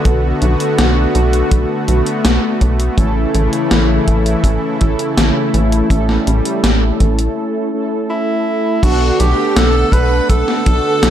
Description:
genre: synthwave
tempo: 82 BPM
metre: 4/4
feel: straight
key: B minor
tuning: A4 = 440 Hz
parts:
  - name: soft supersaw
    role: sustained chords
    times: 0.0-11.1 s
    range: C#3 to F#5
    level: -19 LUFS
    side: left 1 dB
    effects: sidechain pumping
  - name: mellow synth brass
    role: stabs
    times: 0.0-11.1 s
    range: A3 to F#5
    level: -19 LUFS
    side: right 1 dB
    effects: chorus, ping-pong delay
  - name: tight sequencer bass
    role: bass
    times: 0.1-11.1 s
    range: A1 to B1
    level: -15 LUFS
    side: equal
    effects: none
  - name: gated 80s digital drum machine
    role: drums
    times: 0.1-11.1 s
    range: crash cymbal, hi-hat, snare drum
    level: -19 LUFS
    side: left 1 dB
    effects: gated reverb, gated reverb snare
  - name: kick drum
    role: drums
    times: 0.1-10.8 s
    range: none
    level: -15 LUFS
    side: equal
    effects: none
  - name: breathy tenor saxophone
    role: melody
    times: 8.1-11.1 s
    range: E4 to B4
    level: -17 LUFS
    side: right 1 dB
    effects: digital delay
  - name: string machine, violins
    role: second line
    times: 8.8-11.1 s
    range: F#4 to B4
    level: -22 LUFS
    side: right 1 dB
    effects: ensemble chorus
room: moderate lush hall reverb, RT60 2.0 s, small room ambience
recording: dark, warm production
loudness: -12 LUFS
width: side -10 dB against mid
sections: 0.0-8.8 A section; 8.8-11.1 B section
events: break 7.4-8.8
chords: 0.0 Bm7; 3.0 A; 8.8 Bm7

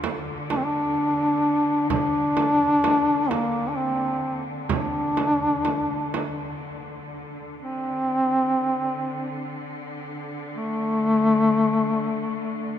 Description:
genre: caucasian folk, Caucasian lament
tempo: 64 BPM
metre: 3/4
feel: rubato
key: unclear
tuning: A4 = 440 Hz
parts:
  - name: dark duduk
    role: melody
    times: 0.0-12.8 s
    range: A3 to D4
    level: -22 LUFS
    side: left 1 dB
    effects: none
  - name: bright studio cello section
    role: drone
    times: 0.0-12.8 s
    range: D3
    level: -34 LUFS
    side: left 2 dB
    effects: none
  - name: frame drum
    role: percussion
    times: 0.0-6.4 s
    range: none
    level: -31 LUFS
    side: right 6 dB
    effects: none
room: moderate cathedral reverb, RT60 5.4 s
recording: minimal, uncompressed stereo recording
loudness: -21 LUFS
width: side -10 dB against mid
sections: 0.0-7.6 A section; 7.6-12.8 A section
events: none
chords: none

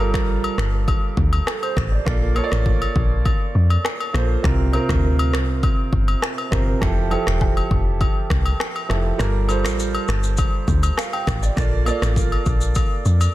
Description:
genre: afrobeats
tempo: 101 BPM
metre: 4/4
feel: straight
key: unclear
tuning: A4 = 440 Hz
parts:
  - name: warm grand piano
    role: accompaniment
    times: 0.0-13.3 s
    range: C3 to G5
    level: -25 LUFS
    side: right 4 dB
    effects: none
  - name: deep log drum bass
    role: bass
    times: 0.0-13.3 s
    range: E1 to F2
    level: -20 LUFS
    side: equal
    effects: none
  - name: afro-pop drum kit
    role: drums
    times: 0.1-13.3 s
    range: finger snaps, kick drum, rim click, shaker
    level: -22 LUFS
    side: equal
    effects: overdrive, soft clipping on snare
  - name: agogo bells and woodblock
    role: percussion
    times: 0.4-13.3 s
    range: none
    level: -28 LUFS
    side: left 5 dB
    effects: none
room: digital ambience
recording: dense, heavily limited modern master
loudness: -17 LUFS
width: side -15 dB against mid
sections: 0.0-13.3 A section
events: break 0.0-9.2; kick muted 9.2-10.4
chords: 0.0 Gm9; 2.1 Bbmaj7; 4.4 C7sus4; 6.8 Fmaj9; 9.2 G7sus2; 11.6 Bbmaj7

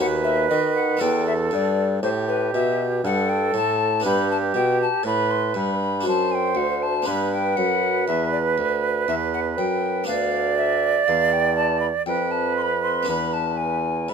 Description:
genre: classical, baroque-style sonata movement with continuo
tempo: 60 BPM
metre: 3/4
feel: straight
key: unclear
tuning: A4 = 438 Hz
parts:
  - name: mellow hollow alto recorder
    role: melody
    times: 0.0-14.1 s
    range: B4 to C6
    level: -25 LUFS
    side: left 6 dB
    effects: none
  - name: concert flute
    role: second line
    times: 0.0-14.1 s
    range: G4 to D5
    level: -24 LUFS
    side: right 6 dB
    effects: none
  - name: harpsichord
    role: accompaniment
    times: 0.0-14.1 s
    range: D2 to B4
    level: -28 LUFS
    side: left 3 dB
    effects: none
  - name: warm bassoon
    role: bass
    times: 0.0-14.1 s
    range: D2 to D#3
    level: -25 LUFS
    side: right 2 dB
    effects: none
room: light reverb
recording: close, detailed microphones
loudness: -19 LUFS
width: side -6 dB against mid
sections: 0.0-14.1 A section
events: none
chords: 0.0 B/D#; 1.0 Em; 4.0 G; 6.1 D/F#; 7.1 G; 10.1 Bdim/D; 13.1 E7

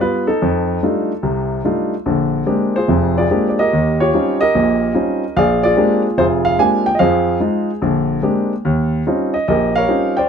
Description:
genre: solo jazz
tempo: 146 BPM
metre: 4/4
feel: swing 65% on 8ths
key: Bb mixolydian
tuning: A4 = 440 Hz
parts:
  - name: warm baby grand piano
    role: solo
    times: 0.0-10.3 s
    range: F1 to Ab5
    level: -14 LUFS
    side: equal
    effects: none
room: moderate club reverb, RT60 0.7 s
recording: dark, warm production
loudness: -14 LUFS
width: side -7 dB against mid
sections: 0.0-2.1 A section; 2.1-10.3 A section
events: none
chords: 0.4 F13; 2.1 Bb13; 3.7 Eb13; 5.4 Bb13; 7.0 Fm7; 7.8 Bb13; 8.7 Eb13

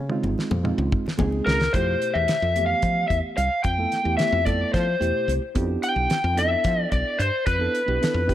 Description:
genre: electric jazz fusion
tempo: 220 BPM (eighths)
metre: 7/8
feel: straight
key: F lydian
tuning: A4 = 440 Hz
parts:
  - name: woody fretless electric bass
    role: bass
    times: 0.0-8.3 s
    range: Ab1 to F3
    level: -25 LUFS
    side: equal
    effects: none
  - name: reed electric piano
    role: accompaniment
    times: 0.1-8.3 s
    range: B2 to A4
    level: -29 LUFS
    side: right 4 dB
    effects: none
  - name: damped 70s drum kit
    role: drums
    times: 0.1-8.3 s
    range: hi-hat, kick drum, snare drum, toms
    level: -26 LUFS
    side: equal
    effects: none
  - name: congas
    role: percussion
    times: 0.2-1.7 s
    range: none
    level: -31 LUFS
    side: left 2 dB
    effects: none
  - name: lead guitar through a small cranked amp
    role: melody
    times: 1.5-8.3 s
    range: Bb4 to G5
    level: -23 LUFS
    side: left 1 dB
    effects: overdrive
room: light reverb, small room ambience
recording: none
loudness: -20 LUFS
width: side -12 dB against mid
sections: 0.0-1.7 A section; 1.7-8.3 B section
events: drum fill 0.1-1.7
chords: 0.0 Dbmaj9; 1.7 Fmaj9#11; 5.6 G13/B

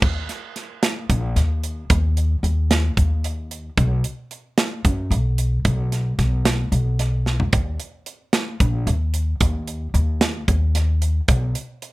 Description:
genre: progressive instrumental, band music in an uneven meter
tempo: 224 BPM (eighths)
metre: 7/8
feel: straight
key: unclear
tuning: A4 = 440 Hz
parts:
  - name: upright bass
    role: bass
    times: 0.0-11.5 s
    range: A#1 to F#2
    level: -19 LUFS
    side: equal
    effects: none
  - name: modern studio drum kit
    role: drums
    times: 0.0-11.9 s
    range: crash cymbal, hi-hat, kick drum, snare drum, toms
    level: -22 LUFS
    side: right 2 dB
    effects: none
room: little or no reverb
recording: none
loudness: -19 LUFS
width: side -19 dB against mid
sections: 0.0-11.9 A section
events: drum fill 7.3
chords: none

